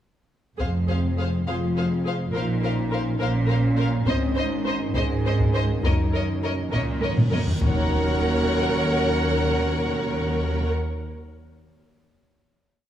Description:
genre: cinematic, epic orchestral film score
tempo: 69 BPM (dotted quarters)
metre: 6/8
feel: straight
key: Eb dorian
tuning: A4 = 443 Hz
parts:
  - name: warm symphonic violin section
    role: melody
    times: 0.6-10.7 s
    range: Eb5 to Gb5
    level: -33 LUFS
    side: left 2 dB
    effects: none
  - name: warm symphonic violin section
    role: second line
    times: 0.6-10.7 s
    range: C5 to Db5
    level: -33 LUFS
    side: left 3 dB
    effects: none
  - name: dark symphonic viola section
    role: accompaniment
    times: 0.6-10.7 s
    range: Ab4 to C5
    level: -30 LUFS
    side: equal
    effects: none
  - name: dark trombone section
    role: sustained chords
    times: 0.6-10.7 s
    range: Eb3 to Db4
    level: -32 LUFS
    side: right 4 dB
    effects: none
  - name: mellow French horn section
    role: sustained chords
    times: 0.6-10.7 s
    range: Ab3 to Ab4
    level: -32 LUFS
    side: left 2 dB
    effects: none
  - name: rich symphonic cello section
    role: bass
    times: 0.6-10.7 s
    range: Eb2 to Bb2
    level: -28 LUFS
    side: right 1 dB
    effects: none
  - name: warm studio double bass section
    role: bass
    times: 0.6-10.7 s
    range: F1 to Eb2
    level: -28 LUFS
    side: right 2 dB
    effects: none
  - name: taiko ensemble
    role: drums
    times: 0.6-8.7 s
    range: none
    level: -25 LUFS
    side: equal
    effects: none
  - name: timpani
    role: percussion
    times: 2.3-3.2, 5.8-10.7 s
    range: Bb2 to Eb3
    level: -31 LUFS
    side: left 1 dB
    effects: none
  - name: reverse cymbal and impact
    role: sound effects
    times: 7.1-9.4 s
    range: none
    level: -37 LUFS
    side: left 1 dB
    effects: none
room: moderate scoring stage reverb, RT60 1.7 s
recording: small room ambience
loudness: -21 LUFS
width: side -11 dB against mid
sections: 0.6-7.6 theme; 7.6-11.1 final chord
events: timpani fill 5.8-7.6; reverse cymbal 7.1-7.6; drum fill 7.2-7.6; impact 7.6-9.4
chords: 0.6 Fm; 2.3 Bbmadd9; 4.1 Ab; 5.8 Ebm7/Gb; 7.6 Ebm7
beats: | 0.59 1.48 | 2.35 3.21 | 4.07 4.96 | 5.84 6.73 | 7.61 8.48 | 9.35 10.22

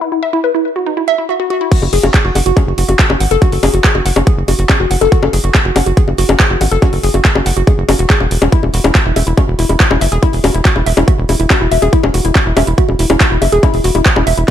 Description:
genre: psychedelic trance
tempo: 141 BPM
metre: 4/4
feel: straight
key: unclear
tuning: A4 = 438 Hz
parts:
  - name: woody wave-folded pluck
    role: riff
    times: 0.0-14.5 s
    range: D#4 to F#5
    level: -16 LUFS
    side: moving between left 7 dB and right 5 dB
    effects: chorus, auto-pan, sidechain pumping, digital delay
  - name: big-room dance drum kit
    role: drums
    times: 1.7-14.5 s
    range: bongos, crash cymbal, handclaps, hi-hat, snare drum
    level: -15 LUFS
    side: left 2 dB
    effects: overdrive, studio reverb
  - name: electronic kick drum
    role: drums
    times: 1.7-14.5 s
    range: none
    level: -11 LUFS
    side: equal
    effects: overdrive, studio reverb
  - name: tight sequencer bass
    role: bass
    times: 1.8-14.4 s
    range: E1 to G#1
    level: -15 LUFS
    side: equal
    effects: tube saturation
room: digital ambience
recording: none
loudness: -10 LUFS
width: side -10 dB against mid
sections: 0.0-1.7 A section; 1.7-14.5 B section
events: drop 1.7-14.5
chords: 0.0 E5; 1.7 N.C.; 8.5 E5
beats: | 0.01 0.44 0.86 1.29 | 1.72 2.14 2.57 2.99 | 3.42 3.84 4.27 4.69 | 5.12 5.54 5.97 6.40 | 6.82 7.25 7.67 8.10 | 8.52 8.95 9.38 9.80 | 10.23 10.65 11.08 11.50 | 11.93 12.35 12.78 13.21 | 13.63 14.06 14.48

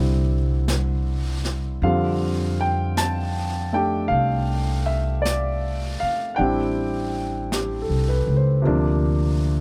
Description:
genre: jazz ballad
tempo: 53 BPM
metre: 4/4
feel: swing 68% on 8ths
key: unclear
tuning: A4 = 440 Hz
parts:
  - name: warm concert grand piano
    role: accompaniment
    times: 0.0-9.6 s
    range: C3 to A5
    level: -26 LUFS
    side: equal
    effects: none
  - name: upright bass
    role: bass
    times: 0.0-9.6 s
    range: A1 to F2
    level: -25 LUFS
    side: equal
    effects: none
  - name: jazz brush drum kit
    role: drums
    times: 0.7-9.6 s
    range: brushed snare drum, hi-hat, snare drum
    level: -36 LUFS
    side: equal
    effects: none
room: little or no reverb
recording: close, detailed microphones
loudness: -23 LUFS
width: mono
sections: 0.0-9.6 A section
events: none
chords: 0.0 C; 1.8 F69; 6.4 Am7; 8.6 Bbadd9/D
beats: 0.68 | 1.82 2.97 4.11 5.24 | 6.38 7.51 8.64

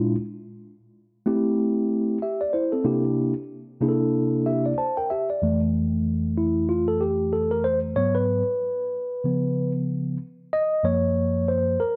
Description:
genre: hip hop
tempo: 94 BPM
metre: 4/4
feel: swing 59% on 16ths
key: F major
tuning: A4 = 440 Hz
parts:
  - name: mellow tine electric piano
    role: solo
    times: 0.0-12.0 s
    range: F2 to A5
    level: -24 LUFS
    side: equal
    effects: slapback echo
room: moderate echo chamber reverb, RT60 2.2 s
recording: none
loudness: -24 LUFS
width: mono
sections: 0.0-5.4 A section; 5.4-12.0 B section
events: tine electric piano solo 5.4-12.0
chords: 0.3 Am7; 2.9 C9; 5.4 Fmaj7; 8.0 Abm7; 9.2 Db7; 10.5 Gbmaj7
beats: | 0.31 0.95 1.59 2.23 | 2.87 3.51 4.14 4.78 | 5.42 6.06 6.70 7.34 | 7.97 8.61 9.25 9.89 | 10.53 11.16 11.80

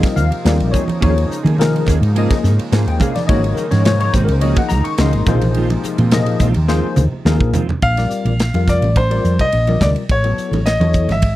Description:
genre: electric jazz fusion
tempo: 106 BPM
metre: 4/4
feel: straight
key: Bb major from 7.8 s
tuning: A4 = 440 Hz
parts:
  - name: tine electric piano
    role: accompaniment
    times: 0.0-11.2 s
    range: F3 to Db6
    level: -21 LUFS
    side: left 6 dB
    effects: ensemble chorus
  - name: warm analog pad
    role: sustained chords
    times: 0.0-7.8 s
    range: C3 to Eb4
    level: -26 LUFS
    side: right 2 dB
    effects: chorus, tremolo
  - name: mellow electric guitar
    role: stabs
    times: 0.0-7.7 s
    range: Eb3 to Ab4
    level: -24 LUFS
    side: right 7 dB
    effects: ensemble chorus
  - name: woody fretless electric bass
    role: bass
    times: 0.0-11.4 s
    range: Ab1 to Eb3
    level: -16 LUFS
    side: equal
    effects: none
  - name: modern studio drum kit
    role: drums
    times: 0.0-11.4 s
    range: hi-hat, kick drum, ride cymbal, snare drum, toms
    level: -19 LUFS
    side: equal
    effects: none
  - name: congas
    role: percussion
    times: 0.7-11.4 s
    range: none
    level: -23 LUFS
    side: right 3 dB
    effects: none
  - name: bright concert grand piano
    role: melody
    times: 7.8-11.4 s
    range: C5 to F5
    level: -19 LUFS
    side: left 1 dB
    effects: none
room: small room ambience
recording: dry, close 1970s-style studio recording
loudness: -13 LUFS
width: side -15 dB against mid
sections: 0.0-7.8 A section; 7.8-11.4 B section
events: drum fill 6.7-7.8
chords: 0.0 Bb9sus4; 1.0 Eb9sus4; 3.3 Ab9sus4; 5.3 Bb9sus4; 7.8 Bbmaj9; 10.1 Amaj9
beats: 0.45 | 1.02 1.58 2.15 2.72 | 3.28 3.85 4.42 4.99 | 5.55 6.12 6.69 7.25 | 7.82 8.39 8.96 9.53 | 10.10 10.67 11.23

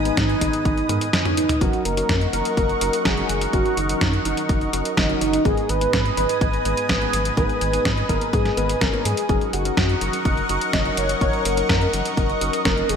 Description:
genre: italo disco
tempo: 125 BPM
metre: 4/4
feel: straight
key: unclear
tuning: A4 = 440 Hz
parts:
  - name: wide unison lead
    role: melody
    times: 0.0-13.0 s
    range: D#4 to D#5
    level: -24 LUFS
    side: equal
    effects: lush chorus, cassette tape, digital delay
  - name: lush unison pad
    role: sustained chords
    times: 0.0-13.0 s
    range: A#4 to D#6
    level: -26 LUFS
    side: equal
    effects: chorus, phaser
  - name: tine electric piano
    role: stabs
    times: 0.0-13.0 s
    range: G#2 to C#5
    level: -30 LUFS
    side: left 2 dB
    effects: medium stereo tremolo
  - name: round analog bass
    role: bass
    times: 0.0-13.0 s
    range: F#1 to G#2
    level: -26 LUFS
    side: equal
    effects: none
  - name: detuned 8-bit digital drum machine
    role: drums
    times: 0.1-13.0 s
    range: hi-hat, snare drum, toms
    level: -25 LUFS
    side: equal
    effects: gated reverb
  - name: electronic kick drum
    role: drums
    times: 0.2-12.7 s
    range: none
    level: -24 LUFS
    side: equal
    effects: none
room: moderate lush hall reverb, RT60 2.7 s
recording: bright 1980s-style digital production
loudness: -18 LUFS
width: side -7 dB against mid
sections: 0.0-13.0 A section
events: drum fill 0.9-1.6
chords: 0.0 G#m; 1.6 F#6; 5.5 G#m; 9.3 F#6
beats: 0.17 0.65 1.13 | 1.61 2.09 2.57 3.05 | 3.53 4.01 4.49 4.97 | 5.45 5.93 6.41 6.89 | 7.37 7.85 8.33 8.81 | 9.29 9.77 10.25 10.73 | 11.21 11.69 12.17 12.65

